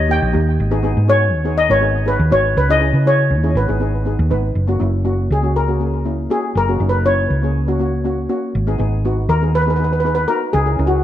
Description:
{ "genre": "calypso", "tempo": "120 BPM", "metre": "4/4", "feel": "straight", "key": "G# minor", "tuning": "A4 = 441 Hz", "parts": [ { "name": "steel pan", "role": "melody", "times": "0.0-11.0 s", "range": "F#4 to G5", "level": "-18 LUFS", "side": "left 1 dB", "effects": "analog delay" }, { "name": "hollow-body short-scale fingered electric bass", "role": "bass", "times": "0.0-11.0 s", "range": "F#1 to C#3", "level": "-17 LUFS", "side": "equal", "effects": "none" }, { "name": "steel pan", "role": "accompaniment", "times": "0.1-10.9 s", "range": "A#3 to B4", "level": "-22 LUFS", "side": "left 1 dB", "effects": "none" } ], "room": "moderate recital hall reverb, RT60 1.5 s, small room ambience", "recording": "dark, warm production", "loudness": "-14 LUFS", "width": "side -12 dB against mid", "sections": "0.0-4.6 A section; 4.6-11.0 B section", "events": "steel pan solo 4.6-11.0", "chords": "0.0 D#; 0.6 G#m; 2.6 C#m; 3.6 G#m; 4.6 F#; 8.6 G#m7" }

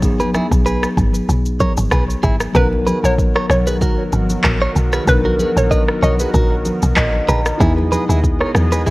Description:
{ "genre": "afrobeats", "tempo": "95 BPM", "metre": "4/4", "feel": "swing 55% on 16ths", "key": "unclear", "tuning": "A4 = 435 Hz", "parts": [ { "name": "mellow tine electric piano", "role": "accompaniment", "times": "0.0-8.9 s", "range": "F#3 to A#5", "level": "-21 LUFS", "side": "left 1 dB", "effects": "medium stereo tremolo" }, { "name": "woody log drum bass", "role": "bass", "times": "0.0-8.9 s", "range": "G#1 to E2", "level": "-18 LUFS", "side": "equal", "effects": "none" }, { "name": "afro-pop drum kit", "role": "drums", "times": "0.0-8.9 s", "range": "handclaps, kick drum, rim click, shaker", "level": "-19 LUFS", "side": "equal", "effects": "none" }, { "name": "congas", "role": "percussion", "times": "0.0-8.9 s", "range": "none", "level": "-26 LUFS", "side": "right 1 dB", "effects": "none" }, { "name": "direct-recorded clean electric guitar", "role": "riff", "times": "0.2-8.9 s", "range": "E4 to D#5", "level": "-22 LUFS", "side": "right 2 dB", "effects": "tape echo" }, { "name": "warm analog pad", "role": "sustained chords", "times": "2.5-8.9 s", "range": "B2 to D#5", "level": "-26 LUFS", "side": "equal", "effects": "chorus, tremolo" }, { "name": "hollow square pluck", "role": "melody", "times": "2.6-6.2 s", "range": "B4 to D#5", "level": "-21 LUFS", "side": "equal", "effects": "chorus, tape echo" } ], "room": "light reverb", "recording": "worn, warbling old tape, cassette tape, warbly pitch drift", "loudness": "-13 LUFS", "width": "side -20 dB against mid", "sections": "0.0-2.5 A section; 2.5-8.9 B section", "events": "tine electric piano fill 6.7-7.6", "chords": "0.0 G#m7; 2.5 Bmaj7; 7.6 Emaj7" }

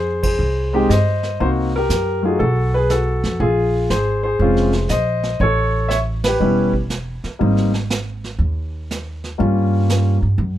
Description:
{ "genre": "jazz piano trio", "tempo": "120 BPM", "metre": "4/4", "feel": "swing 67% on 8ths", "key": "F minor", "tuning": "A4 = 440 Hz", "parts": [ { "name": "warm concert grand piano", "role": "melody", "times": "0.0-10.2 s", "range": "Gb3 to E5", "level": "-18 LUFS", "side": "left 1 dB", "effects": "none" }, { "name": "upright bass", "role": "bass", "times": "0.0-10.6 s", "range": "E1 to G2", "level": "-20 LUFS", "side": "right 1 dB", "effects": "none" }, { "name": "vintage brush drum kit", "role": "drums", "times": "0.2-10.6 s", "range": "brushed snare drum, hi-hat, kick drum, ride cymbal, snare drum", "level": "-26 LUFS", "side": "right 2 dB", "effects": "none" } ], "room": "light reverb", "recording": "minimal, uncompressed stereo recording", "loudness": "-16 LUFS", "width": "side -12 dB against mid", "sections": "0.0-10.6 A section", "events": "band accent 0.2, 6.2", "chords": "0.0 Fm9; 1.4 Cm7b5; 2.4 B5; 3.4 Bb7sus2; 5.4 A9; 7.4 Ab5; 9.4 Gm7b5" }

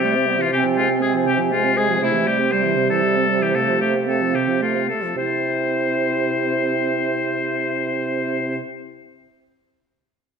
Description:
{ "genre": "quick classical-period movement for wind quintet", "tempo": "107-122 BPM", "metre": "3/4", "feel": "straight", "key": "C major", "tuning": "A4 = 440 Hz", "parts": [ { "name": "mellow hollow concert flute", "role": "melody", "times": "0.0-8.6 s", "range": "E5 to Ab5", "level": "-30 LUFS", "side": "left 8 dB", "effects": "none" }, { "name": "clear oboe", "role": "second line", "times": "0.0-8.6 s", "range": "E4 to C5", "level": "-22 LUFS", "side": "left 4 dB", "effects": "none" }, { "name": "clear French horn", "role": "accompaniment", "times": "0.0-8.6 s", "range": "C3 to C4", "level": "-28 LUFS", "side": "equal", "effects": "none" }, { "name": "warm clarinet", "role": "accompaniment", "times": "0.0-8.6 s", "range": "G3 to E4", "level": "-25 LUFS", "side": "right 7 dB", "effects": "none" }, { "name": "mellow bassoon", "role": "bass", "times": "0.0-8.6 s", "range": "C3", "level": "-23 LUFS", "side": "right 4 dB", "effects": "none" } ], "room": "wet scoring stage reverb, RT60 1.6 s", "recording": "dark, warm production", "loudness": "-18 LUFS", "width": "side -6 dB against mid", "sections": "0.0-5.2 A section; 5.2-8.5 B section", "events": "slowing down 1.3-5.2", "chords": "0.0 C; 0.5 Fm/C; 2.0 C; 3.5 F/C; 5.2 C" }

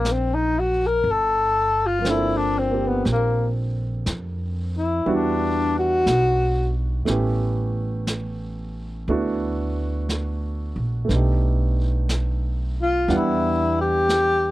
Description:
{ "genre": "jazz ballad", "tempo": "60 BPM", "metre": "4/4", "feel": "swing 67% on 8ths", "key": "D major", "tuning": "A4 = 440 Hz", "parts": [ { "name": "breathy tenor saxophone", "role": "melody", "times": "0.0-6.7, 12.8-14.5 s", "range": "Bb3 to A#4", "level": "-20 LUFS", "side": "left 2 dB", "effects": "none" }, { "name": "warm grand piano", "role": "accompaniment", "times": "0.0-14.5 s", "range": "F3 to F#5", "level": "-27 LUFS", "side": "right 3 dB", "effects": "none" }, { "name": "upright bass", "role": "bass", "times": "0.0-14.5 s", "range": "G1 to F2", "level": "-24 LUFS", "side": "equal", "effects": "none" }, { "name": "jazz brush drum kit", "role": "drums", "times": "0.0-14.5 s", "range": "brushed snare drum, hi-hat, snare drum", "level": "-31 LUFS", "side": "equal", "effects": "none" } ], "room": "little or no reverb", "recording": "dry, close 1970s-style studio recording", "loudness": "-20 LUFS", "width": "side -16 dB against mid", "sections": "0.0-14.5 A section", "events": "tenor saxophone solo 0.0-14.5", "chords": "0.0 D7alt; 1.0 Gm11; 5.1 Em9; 7.1 A7; 9.1 D69; 11.1 B7alt; 13.1 Em9" }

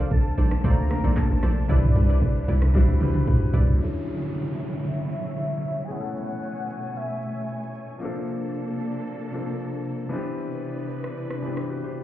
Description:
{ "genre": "amapiano", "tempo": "114 BPM", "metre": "4/4", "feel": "straight", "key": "unclear", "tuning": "A4 = 440 Hz", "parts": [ { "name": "warm velvety synth lead", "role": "melody", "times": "0.0-7.8 s", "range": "D5 to Bb5", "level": "-34 LUFS", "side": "left 2 dB", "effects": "chorus, low-pass filter, ping-pong delay" }, { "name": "clear concert grand piano", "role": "accompaniment", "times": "0.0-12.0 s", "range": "E3 to C5", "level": "-31 LUFS", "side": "left 4 dB", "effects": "low-pass filter" }, { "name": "dark studio string section", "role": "sustained chords", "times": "0.0-12.0 s", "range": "B2 to G#5", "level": "-31 LUFS", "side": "right 1 dB", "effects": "low-pass filter" }, { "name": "analog pluck", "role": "stabs", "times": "0.0-3.6 s", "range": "E4 to D5", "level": "-38 LUFS", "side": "right 4 dB", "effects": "chorus, ping-pong delay" }, { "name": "hollow log drum bass", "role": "bass", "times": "0.0-3.8 s", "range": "A1 to D2", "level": "-22 LUFS", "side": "equal", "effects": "none" }, { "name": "deep house drum kit", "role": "drums", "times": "0.1-11.7 s", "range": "handclaps, hi-hat, kick drum, rim click, shaker, toms", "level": "-23 LUFS", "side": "equal", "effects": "none" }, { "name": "bongos and congas", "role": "percussion", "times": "0.1-3.4 s", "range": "none", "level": "-32 LUFS", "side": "right 7 dB", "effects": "none" }, { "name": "downlifter", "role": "sound effects", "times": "3.8-8.0 s", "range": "none", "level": "-36 LUFS", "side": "right 2 dB", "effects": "none" } ], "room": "little or no reverb", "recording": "heard muffled through a wall, club reverb, EQ, nothing above 10.5 kHz", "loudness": "-22 LUFS", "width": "side -14 dB against mid", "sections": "0.0-3.8 A section; 3.8-12.0 B section", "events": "drop 0.0-3.8; drum fill 2.7-3.8; filter sweep 3.8-12.0; break 11.7-12.0", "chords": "0.0 Bbmaj9; 1.7 Cmaj9; 3.8 Dmaj9; 5.9 Amaj9; 8.0 Bbmaj9; 10.1 Cmaj9" }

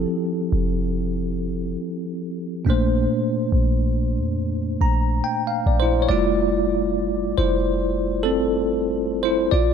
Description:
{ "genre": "contemporary R&B", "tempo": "70 BPM", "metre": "4/4", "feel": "swing 54% on 16ths", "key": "F major", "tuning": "A4 = 440 Hz", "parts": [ { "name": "bell-like tine electric piano", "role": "accompaniment", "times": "0.0-9.7 s", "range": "Bb2 to Bb5", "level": "-21 LUFS", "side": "equal", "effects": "fast stereo tremolo" }, { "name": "clean 808-style bass", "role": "bass", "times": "0.0-9.7 s", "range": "F1 to F2", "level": "-23 LUFS", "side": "equal", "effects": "none" } ], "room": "light reverb", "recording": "none", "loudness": "-20 LUFS", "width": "side -7 dB against mid", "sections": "0.0-6.1 A section; 6.1-9.7 B section", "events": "tine electric piano fill 4.4-6.1; tine electric piano solo 6.1-9.7", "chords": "0.0 Fmaj7; 2.7 Bbmaj9; 6.1 Fmaj7" }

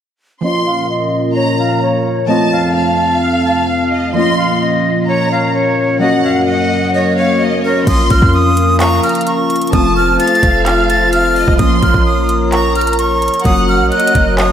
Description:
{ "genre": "hip hop, trap", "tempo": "129 BPM", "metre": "4/4", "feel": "half-time", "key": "Bb harmonic minor", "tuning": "A4 = 437 Hz", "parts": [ { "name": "breathy bright jazz flute", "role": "melody", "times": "0.4-14.5 s", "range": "Bb4 to A6", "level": "-16 LUFS", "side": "equal", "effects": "low-pass filter, diffuse ambient delay" }, { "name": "warm symphonic violin section", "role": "second line", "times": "0.4-14.5 s", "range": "Db5 to C6", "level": "-19 LUFS", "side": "equal", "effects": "diffuse ambient delay" }, { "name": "warbly lo-fi synth keys", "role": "accompaniment", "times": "0.4-14.5 s", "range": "F3 to Gb4", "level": "-18 LUFS", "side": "equal", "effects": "chorus, low-pass filter" }, { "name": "dark analog pad", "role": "sustained chords", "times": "0.4-14.5 s", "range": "F2 to Bb5", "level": "-18 LUFS", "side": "left 1 dB", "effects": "lush chorus, low-pass filter" }, { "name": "swell", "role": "sound effects", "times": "7.0-7.9 s", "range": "none", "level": "-24 LUFS", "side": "left 5 dB", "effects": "none" }, { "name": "clean 808-style bass", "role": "bass", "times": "7.9-14.5 s", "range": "F1 to F2", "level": "-16 LUFS", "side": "equal", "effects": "none" }, { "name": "trap drum kit", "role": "drums", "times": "7.9-14.5 s", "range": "crash cymbal, handclaps, hi-hat, kick drum", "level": "-17 LUFS", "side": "equal", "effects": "none" } ], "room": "wet lush hall reverb, RT60 2.3 s", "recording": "dreamy mix soaked in reverb", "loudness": "-11 LUFS", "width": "side -9 dB against mid", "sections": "0.4-7.9 A section; 7.9-14.5 B section", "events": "filter sweep 0.4-7.9; swell 7.0-7.9", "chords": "0.4 Bbm; 2.3 F; 4.2 Bbm; 6.0 Gb; 7.9 Bbm; 9.7 F; 11.6 Bbm; 13.5 Gb" }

